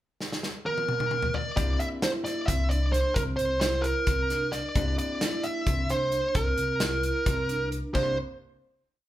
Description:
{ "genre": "progressive instrumental, band music in an uneven meter", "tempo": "264 BPM (eighths)", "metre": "7/8", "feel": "straight", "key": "C mixolydian", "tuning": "A4 = 445 Hz", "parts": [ { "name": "natural country drum kit", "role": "drums", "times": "0.2-8.1 s", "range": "crash cymbal, hi-hat, kick drum, snare drum, toms", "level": "-30 LUFS", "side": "equal", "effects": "none" }, { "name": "fuzz lead guitar", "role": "melody", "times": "0.7-8.2 s", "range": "Bb4 to E5", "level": "-28 LUFS", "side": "right 1 dB", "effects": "distortion" }, { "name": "hollow-body jazz guitar", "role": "accompaniment", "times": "1.6-8.2 s", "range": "Bb3 to G4", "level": "-40 LUFS", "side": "left 5 dB", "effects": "none" }, { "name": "vibraphone with medium mallets", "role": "arpeggios", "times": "1.6-8.2 s", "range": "C4 to E4", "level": "-35 LUFS", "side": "right 1 dB", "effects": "none" }, { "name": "upright bass", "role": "bass", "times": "1.6-8.2 s", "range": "C2", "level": "-30 LUFS", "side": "equal", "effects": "none" } ], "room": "moderate large studio reverb, RT60 0.9 s", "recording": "band playing live in one room", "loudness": "-25 LUFS", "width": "side -13 dB against mid", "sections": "0.0-1.6 pickup bar; 1.6-7.9 A section; 7.9-9.1 final chord", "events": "drum fill 0.2-1.6", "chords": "0.0 N.C.; 1.6 C9" }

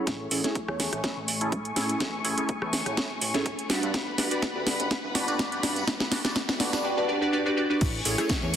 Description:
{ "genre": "filtered disco house", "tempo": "124 BPM", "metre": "4/4", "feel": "swing 54% on 16ths", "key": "A major", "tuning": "A4 = 440 Hz", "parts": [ { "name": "funky polysynth comp", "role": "accompaniment", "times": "0.0-8.6 s", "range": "C#4 to D5", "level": "-29 LUFS", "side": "equal", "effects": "chorus, phaser, sidechain pumping, low-pass filter" }, { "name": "clear symphonic string section", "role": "sustained chords", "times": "0.0-8.6 s", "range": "A3 to C#6", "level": "-34 LUFS", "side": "left 2 dB", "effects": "vintage 12-bit sampler grit, sidechain pumping, low-pass filter" }, { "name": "fat analog bass", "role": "bass", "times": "0.1-8.6 s", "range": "G1 to A2", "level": "-36 LUFS", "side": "equal", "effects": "sidechain pumping, high-pass filter, low-pass filter" }, { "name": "electronic kick drum", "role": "drums", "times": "0.1-8.4 s", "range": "none", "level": "-30 LUFS", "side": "equal", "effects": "high-pass filter on kick" }, { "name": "house drum kit", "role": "drums", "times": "0.1-8.6 s", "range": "crash cymbal, hi-hat, rim click, shaker, snare drum", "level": "-28 LUFS", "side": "equal", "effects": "sidechain pumping on hats, low-pass filter on hats, sidechain pumping on perc, low-pass filter on perc, soft clipping on snare, low-pass filter on snare, sidechain pumping on cymbals, low-pass filter on cymbals" }, { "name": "tambourine", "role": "percussion", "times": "0.1-8.6 s", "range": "none", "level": "-42 LUFS", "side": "right 5 dB", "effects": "none" } ], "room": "wet lush hall reverb, RT60 1.8 s", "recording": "dense, heavily limited modern master", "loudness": "-25 LUFS", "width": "side -9 dB against mid", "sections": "0.1-7.8 A section", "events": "build-up 0.1-7.8; drum fill 0.1-6.8; filter sweep 0.1-7.8", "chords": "0.1 Amaj7; 3.7 Gmaj7; 7.8 Amaj7" }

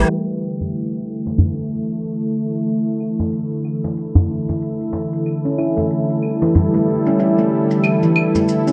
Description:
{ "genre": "organic downtempo", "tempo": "93 BPM", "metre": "4/4", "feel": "swing 59% on 16ths", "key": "unclear", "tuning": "A4 = 440 Hz", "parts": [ { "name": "handpan", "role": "arpeggios", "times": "0.0-0.1, 5.5-8.7 s", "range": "E3 to E4", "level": "-22 LUFS", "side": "equal", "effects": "digital delay" }, { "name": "warm analog pad", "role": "sustained chords", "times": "0.1-8.7 s", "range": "D3 to A4", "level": "-21 LUFS", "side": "equal", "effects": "chorus" }, { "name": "claves and shaker", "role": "drums", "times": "0.1-8.7 s", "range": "none", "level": "-25 LUFS", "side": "equal", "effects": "overdrive, low-pass filter on perc, low-pass filter on snare, low-pass filter on room" }, { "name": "djembe", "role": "percussion", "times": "0.6-8.5 s", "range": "none", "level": "-21 LUFS", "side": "equal", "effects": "none" } ], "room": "wet plate reverb, RT60 1.3 s, digital ambience", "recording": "bright 1980s-style digital production, low-pass filter", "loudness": "-19 LUFS", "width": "mono", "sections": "0.1-8.7 A section", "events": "band accent 0.0; filter sweep on drum 0.1-8.7; filter sweep 0.1-8.7", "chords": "0.1 Asus4" }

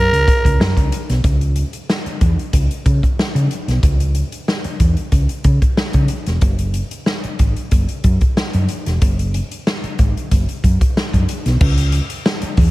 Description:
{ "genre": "funk", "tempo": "93 BPM", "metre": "4/4", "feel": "straight", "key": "C# dorian", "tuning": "A4 = 443 Hz", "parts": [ { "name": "growling tenor saxophone", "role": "melody", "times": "0.0-1.2 s", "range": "A#4", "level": "-17 LUFS", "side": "right 2 dB", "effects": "none" }, { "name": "hollow-body short-scale fingered electric bass", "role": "bass", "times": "0.0-12.7 s", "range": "E1 to C#3", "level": "-17 LUFS", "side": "equal", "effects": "none" }, { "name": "swinging big-band drum kit", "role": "drums", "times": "0.1-12.7 s", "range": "crash cymbal, hi-hat, kick drum, snare drum", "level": "-17 LUFS", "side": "equal", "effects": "none" } ], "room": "small room ambience", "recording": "none", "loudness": "-14 LUFS", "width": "side -18 dB against mid", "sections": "0.0-1.2 A section; 1.2-11.6 B section; 11.6-12.7 C section", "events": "tenor saxophone solo 0.0-1.2", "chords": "0.0 F#; 1.2 N.C.; 11.6 C#m" }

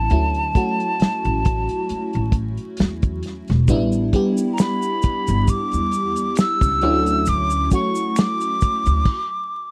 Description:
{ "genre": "R&B, neo-soul", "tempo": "67 BPM", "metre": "4/4", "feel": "swing 55% on 16ths", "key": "D major", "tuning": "A4 = 440 Hz", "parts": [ { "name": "hollow jazz flute", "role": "melody", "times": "0.0-9.7 s", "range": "A5 to E6", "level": "-24 LUFS", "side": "equal", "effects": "none" }, { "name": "FM electric piano with soft pad layer", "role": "accompaniment", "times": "0.0-9.1 s", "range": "F#3 to G4", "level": "-26 LUFS", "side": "equal", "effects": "chorus, phaser" }, { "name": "upright bass", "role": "bass", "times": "0.0-9.0 s", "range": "E1 to E2", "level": "-24 LUFS", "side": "equal", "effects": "none" }, { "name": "warm soul drum kit", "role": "drums", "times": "0.1-9.3 s", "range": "crash cymbal, hi-hat, kick drum, snare drum", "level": "-21 LUFS", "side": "equal", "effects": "none" }, { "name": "tube shaker and finger snaps", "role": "percussion", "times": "3.7-9.0 s", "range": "none", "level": "-37 LUFS", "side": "equal", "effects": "none" } ], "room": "little or no reverb", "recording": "dry, close 1970s-style studio recording, vinyl crackle", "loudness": "-20 LUFS", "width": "mono", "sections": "0.0-9.7 A section", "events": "stop 9.1-9.7", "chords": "0.1 Dmaj9 (rootless); 3.7 A9sus4; 6.8 Dmaj9" }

